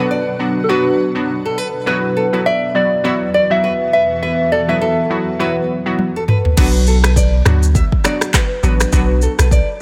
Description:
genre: afrobeats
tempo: 102 BPM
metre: 4/4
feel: swing 58% on 16ths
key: unclear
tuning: A4 = 445 Hz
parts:
  - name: soft struck synth lead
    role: melody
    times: 0.0-6.2 s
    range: F#4 to E5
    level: -19 LUFS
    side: equal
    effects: chorus, digital delay
  - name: glassy wavetable pluck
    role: accompaniment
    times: 0.0-9.5 s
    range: F#3 to F#4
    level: -23 LUFS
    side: equal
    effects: chorus
  - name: granular cloud pad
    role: sustained chords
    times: 0.0-6.5 s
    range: E2 to F#5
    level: -27 LUFS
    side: equal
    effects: built-in reverb
  - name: nylon-string guitar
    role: riff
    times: 0.0-9.7 s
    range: A4 to E5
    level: -25 LUFS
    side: equal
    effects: digital delay
  - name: afro-pop drum kit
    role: drums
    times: 6.0-9.7 s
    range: crash cymbal, finger snaps, handclaps, kick drum, rim click, shaker, toms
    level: -18 LUFS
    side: equal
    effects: none
  - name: punchy sub bass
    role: bass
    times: 6.6-9.6 s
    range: A1 to D2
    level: -15 LUFS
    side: equal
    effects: none
room: light reverb, digital ambience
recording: none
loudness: -15 LUFS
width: mono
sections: 0.0-6.6 A section; 6.6-9.8 B section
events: drum fill 6.0-6.6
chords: 0.0 Bm; 1.9 Esus2; 6.6 Bm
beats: 0.10 0.69 1.28 | 1.87 2.46 3.04 3.63 | 4.22 4.81 5.40 5.99 | 6.57 7.16 7.75 8.34 | 8.93 9.52

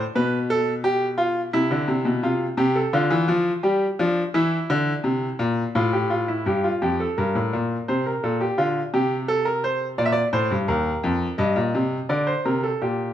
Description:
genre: classical, baroque-style two-part invention for grand piano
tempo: 85 BPM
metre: 3/4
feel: straight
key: unclear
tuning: A4 = 439 Hz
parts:
  - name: bright grand piano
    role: solo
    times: 0.2-13.1 s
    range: Eb2 to E5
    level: -20 LUFS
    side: equal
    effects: none
room: moderate recital hall reverb, RT60 1.5 s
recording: close, detailed microphones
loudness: -20 LUFS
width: side -11 dB against mid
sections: 0.0-6.5 A section; 6.5-13.1 B section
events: none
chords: 0.1 G7/B; 1.5 C; 2.2 F/C; 3.6 G5; 4.3 C7; 5.8 F/A; 6.5 Gm9/F; 7.9 Am/C; 8.6 Dm; 10.0 Gm/Bb; 10.7 Eb5; 11.4 Eb/G; 12.1 D5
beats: | 0.15 0.84 1.54 | 2.23 2.93 3.64 | 4.34 5.05 5.75 | 6.46 7.17 7.88 | 8.58 9.28 9.98 | 10.68 11.38 12.09 | 12.81

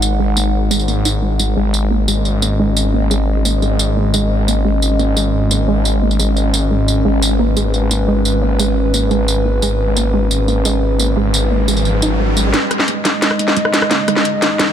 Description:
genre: dark technical drum and bass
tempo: 175 BPM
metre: 4/4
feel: straight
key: G# minor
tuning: A4 = 439 Hz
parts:
  - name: dark analog pad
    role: sustained chords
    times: 0.0-14.7 s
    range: G#3 to F#5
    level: -19 LUFS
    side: equal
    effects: chorus
  - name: snarling distorted saw bass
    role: bass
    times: 0.0-12.5 s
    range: G#1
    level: -16 LUFS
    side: equal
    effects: distortion, tube saturation
  - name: drum and bass drum kit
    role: drums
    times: 0.0-14.7 s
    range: hi-hat, rim click, snare drum, tambourine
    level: -18 LUFS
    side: equal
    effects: none
  - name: soft round pluck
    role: arpeggios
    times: 0.2-14.7 s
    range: G#3 to D#4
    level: -22 LUFS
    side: right 3 dB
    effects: analog chorus, tape echo
  - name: riser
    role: sound effects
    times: 10.9-14.7 s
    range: none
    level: -24 LUFS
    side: equal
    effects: none
room: light reverb, digital ambience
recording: none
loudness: -13 LUFS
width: side -9 dB against mid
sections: 0.0-12.5 A section; 12.5-14.7 B section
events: filter sweep on synth pluck 0.0-12.5; riser 10.9-12.5, 12.5-14.7; build-up 12.5-14.7; drum fill 12.5-14.7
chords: 0.0 G#5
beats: | 0.20 0.54 0.88 1.22 | 1.57 1.91 2.25 2.60 | 2.94 3.28 3.62 3.97 | 4.31 4.65 5.00 5.34 | 5.68 6.02 6.37 6.71 | 7.05 7.39 7.74 8.08 | 8.42 8.77 9.11 9.45 | 9.79 10.14 10.48 10.82 | 11.17 11.51 11.85 12.20 | 12.54 12.88 13.22 13.57 | 13.91 14.25 14.60

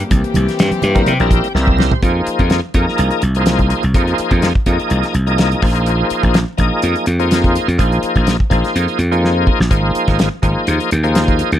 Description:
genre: electric jazz fusion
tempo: 125 BPM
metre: 4/4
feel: swing 54% on 16ths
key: F minor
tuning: A4 = 438 Hz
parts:
  - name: warm chamber string section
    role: sustained chords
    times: 0.0-2.0 s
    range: E3 to G4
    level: -22 LUFS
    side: left 3 dB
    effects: none
  - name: slap bass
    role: bass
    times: 0.0-11.6 s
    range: Ab1 to C3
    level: -16 LUFS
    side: equal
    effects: none
  - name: damped 70s drum kit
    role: drums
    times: 0.0-11.6 s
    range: hi-hat, kick drum, snare drum, toms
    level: -17 LUFS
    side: equal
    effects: none
  - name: congas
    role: percussion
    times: 0.1-1.9 s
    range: none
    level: -22 LUFS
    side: right 3 dB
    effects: none
  - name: bright tonewheel organ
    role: accompaniment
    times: 0.9-11.5 s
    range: F3 to G5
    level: -17 LUFS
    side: left 1 dB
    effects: slow rotary speaker, overdrive, chorus vibrato
room: little or no reverb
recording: none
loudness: -12 LUFS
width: side -11 dB against mid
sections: 0.0-2.0 A section; 2.0-11.6 B section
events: tonewheel organ fill 1.1-2.0; drum fill 1.5-2.0, 9.2-9.7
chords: 0.1 C7; 2.0 Fm7; 5.6 Bb9sus4; 9.7 Abadd9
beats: | 0.11 0.59 1.06 1.54 | 2.02 2.50 2.98 3.46 | 3.94 4.42 4.91 5.39 | 5.87 6.35 6.83 7.31 | 7.79 8.27 8.75 9.23 | 9.71 10.19 10.67 11.15

